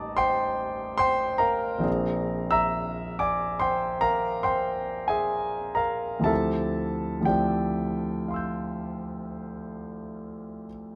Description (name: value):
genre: classical, impressionist solo piano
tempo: 58-73 BPM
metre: 5/4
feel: rubato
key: unclear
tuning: A4 = 439 Hz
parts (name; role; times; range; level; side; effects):
- clear concert grand piano; solo; 0.0-11.0 s; A1 to G6; -28 LUFS; equal; none
room: light reverb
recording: close, detailed microphones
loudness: -27 LUFS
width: mono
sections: 0.0-11.0 A section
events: none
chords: 0.0 Ebmaj7/A; 1.9 Bb9; 6.3 Dm11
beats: 0.19 1.02 | 1.86 2.79 3.62 4.46 5.34 | 6.30 7.31 8.29 9.26 10.23